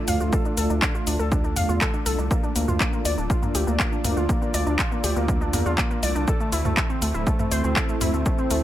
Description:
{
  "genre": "melodic techno",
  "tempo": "121 BPM",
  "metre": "4/4",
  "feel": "straight",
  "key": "unclear",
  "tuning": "A4 = 440 Hz",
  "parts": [
    { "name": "dark analog pad", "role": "sustained chords", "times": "0.0-8.6 s", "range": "A3 to D5", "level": "-29 LUFS", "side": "right 1 dB", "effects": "chorus, sidechain pumping" },
    { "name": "swarming drone", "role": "drone", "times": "0.0-8.6 s", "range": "D3 to A3", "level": "-36 LUFS", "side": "right 2 dB", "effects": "none" },
    { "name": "warbly dusty pluck", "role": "arpeggios", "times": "0.1-8.6 s", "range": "A3 to F5", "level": "-28 LUFS", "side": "left 1 dB", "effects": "chorus, sidechain pumping, dub echo" },
    { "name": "round analog bass", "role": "bass", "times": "0.1-8.6 s", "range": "D1 to E2", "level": "-25 LUFS", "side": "equal", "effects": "sidechain pumping" },
    { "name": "house drum kit", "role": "drums", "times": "0.1-8.6 s", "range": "handclaps, hi-hat, shaker, toms", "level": "-27 LUFS", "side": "equal", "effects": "none" },
    { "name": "electronic kick drum", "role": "drums", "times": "0.3-8.4 s", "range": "none", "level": "-24 LUFS", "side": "equal", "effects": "none" }
  ],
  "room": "little or no reverb",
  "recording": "none",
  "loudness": "-20 LUFS",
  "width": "side -13 dB against mid",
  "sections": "0.0-8.6 A section",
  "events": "none",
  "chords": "0.0 Dm; 2.3 Bb/D; 6.3 Am/D"
}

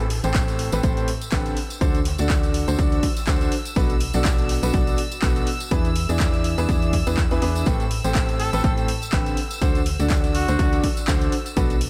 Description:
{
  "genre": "piano house",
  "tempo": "123 BPM",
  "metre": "4/4",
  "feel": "swing 56% on 16ths",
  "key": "unclear",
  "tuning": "A4 = 440 Hz",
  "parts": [
    { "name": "rich chamber string section", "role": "sustained chords", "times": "0.0-11.9 s", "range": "E6", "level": "-37 LUFS", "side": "equal", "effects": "sidechain pumping" },
    { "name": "bright grand piano", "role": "riff", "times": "0.0-11.7 s", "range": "A2 to D5", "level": "-28 LUFS", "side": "equal", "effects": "vintage 12-bit sampler grit, sidechain pumping" },
    { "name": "organ-like FM bass", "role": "bass", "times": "0.0-11.9 s", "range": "A1 to E2", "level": "-27 LUFS", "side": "equal", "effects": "sidechain pumping" },
    { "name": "punchy analog drum machine", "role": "drums", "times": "0.0-11.9 s", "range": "handclaps, hi-hat", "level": "-33 LUFS", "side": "equal", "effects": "overdrive" },
    { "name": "jazz brush drum kit", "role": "drums", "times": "0.1-11.9 s", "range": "hi-hat, snare drum", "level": "-44 LUFS", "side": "equal", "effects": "none" },
    { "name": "tambourine", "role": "percussion", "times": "0.2-11.8 s", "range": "none", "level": "-40 LUFS", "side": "equal", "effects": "none" },
    { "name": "electronic kick drum", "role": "drums", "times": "0.3-11.7 s", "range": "none", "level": "-25 LUFS", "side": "equal", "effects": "overdrive" },
    { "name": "clear trumpet", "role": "melody", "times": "8.4-10.8 s", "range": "F#4 to A4", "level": "-32 LUFS", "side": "equal", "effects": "none" }
  ],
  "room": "light reverb, small room ambience",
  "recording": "none",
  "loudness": "-22 LUFS",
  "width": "mono",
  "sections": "0.0-11.9 A section",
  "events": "none",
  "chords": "0.0 Am9; 1.6 D7; 3.8 Bm7; 5.7 E7; 7.7 Am9; 9.4 D7"
}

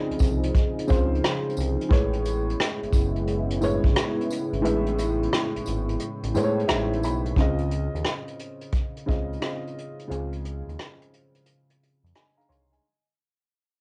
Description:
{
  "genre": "lo-fi hip hop",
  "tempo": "88 BPM",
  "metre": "4/4",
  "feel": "swing 66% on 16ths",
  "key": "unclear",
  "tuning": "A4 = 441 Hz",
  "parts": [
    { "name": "dark upright piano", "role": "accompaniment", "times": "0.0-13.0 s", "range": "A2 to C6", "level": "-30 LUFS", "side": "equal", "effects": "cassette tape, low-pass filter" },
    { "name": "dark analog pad", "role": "sustained chords", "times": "0.0-7.3 s", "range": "C#3 to G#4", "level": "-34 LUFS", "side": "equal", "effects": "chorus, low-pass filter, cassette tape" },
    { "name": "smooth gliding synth bass", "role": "bass", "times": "0.1-12.8 s", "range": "Gb1 to A2", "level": "-31 LUFS", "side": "equal", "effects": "none" },
    { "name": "vintage brush drum kit", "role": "drums", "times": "0.1-12.8 s", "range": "hi-hat, kick drum, rim click", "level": "-27 LUFS", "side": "equal", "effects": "vintage 12-bit sampler grit, cassette tape" },
    { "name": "tambourine", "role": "percussion", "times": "0.2-7.2 s", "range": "none", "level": "-48 LUFS", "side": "equal", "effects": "none" }
  ],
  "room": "light reverb",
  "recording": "home recording on cassette",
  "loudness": "-25 LUFS",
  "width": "mono",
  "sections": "0.0-7.4 A section; 7.4-12.8 B section",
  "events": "kick muted 4.6-7.4; fade-out 7.4-12.8; break 10.1-12.8; upright piano fill 11.8-12.8",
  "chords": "0.0 Dbmaj9; 1.9 Amaj9; 7.4 Dbmaj9"
}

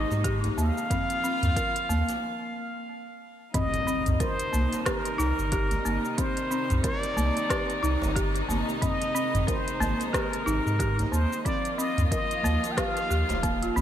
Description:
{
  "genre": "organic downtempo",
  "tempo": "91 BPM",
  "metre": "4/4",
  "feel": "swing 58% on 16ths",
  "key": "C minor",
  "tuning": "A4 = 440 Hz",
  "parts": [
    { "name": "trumpet with plunger mute", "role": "melody", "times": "0.0-13.8 s", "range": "Bb4 to G5", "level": "-31 LUFS", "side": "equal", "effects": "digital delay" },
    { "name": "dark chamber string section", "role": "sustained chords", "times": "0.0-13.8 s", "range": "C3 to F4", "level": "-36 LUFS", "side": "left 1 dB", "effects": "sidechain pumping" },
    { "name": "folk marimba with medium hard mallets", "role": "arpeggios", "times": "0.0-13.8 s", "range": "Bb3 to Bb4", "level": "-31 LUFS", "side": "equal", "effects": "ping-pong delay" },
    { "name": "warm sub bass", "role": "bass", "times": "0.0-13.8 s", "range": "Eb1 to Ab2", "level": "-27 LUFS", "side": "equal", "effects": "none" },
    { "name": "deep house drum kit", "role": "drums", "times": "0.1-13.8 s", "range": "cabasa, hi-hat, rim click, toms", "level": "-32 LUFS", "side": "left 1 dB", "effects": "gated reverb" },
    { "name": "djembe", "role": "percussion", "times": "0.1-13.8 s", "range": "none", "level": "-37 LUFS", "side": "right 1 dB", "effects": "none" },
    { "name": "electronic kick drum", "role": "drums", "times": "0.2-13.6 s", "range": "none", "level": "-31 LUFS", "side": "equal", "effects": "none" },
    { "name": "impact", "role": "sound effects", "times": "3.5-6.2 s", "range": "none", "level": "-36 LUFS", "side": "equal", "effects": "none" }
  ],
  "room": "moderate lush hall reverb, RT60 2.6 s",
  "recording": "bright 1980s-style digital production",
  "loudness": "-24 LUFS",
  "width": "side -10 dB against mid",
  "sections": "0.0-3.5 A section; 3.5-13.8 B section",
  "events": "break 2.2-3.5; impact 3.5-6.2",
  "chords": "0.0 Ab; 0.9 Ebsus2; 3.5 Cm; 8.8 Ab; 11.5 Ebsus2"
}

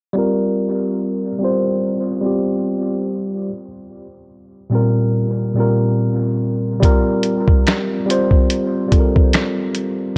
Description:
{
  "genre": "lo-fi hip hop",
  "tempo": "72 BPM",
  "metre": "4/4",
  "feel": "swing 60% on 16ths",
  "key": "unclear",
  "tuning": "A4 = 440 Hz",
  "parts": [
    { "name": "mellow tine electric piano", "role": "accompaniment", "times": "0.1-10.2 s", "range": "Bb2 to C5", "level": "-20 LUFS", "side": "equal", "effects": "cassette tape, low-pass filter, analog delay" },
    { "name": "lo-fi sampler-style drum kit", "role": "drums", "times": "6.8-10.0 s", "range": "finger snaps, hi-hat, kick drum, snare drum", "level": "-17 LUFS", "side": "equal", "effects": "none" }
  ],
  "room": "light reverb",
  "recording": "echo-heavy mix, cassette tape",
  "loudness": "-18 LUFS",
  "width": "mono",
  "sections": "0.2-10.2 A section",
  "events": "filter sweep on tine electric piano 0.2-10.2",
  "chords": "0.2 C5; 3.5 Gm7/Bb; 6.8 C5"
}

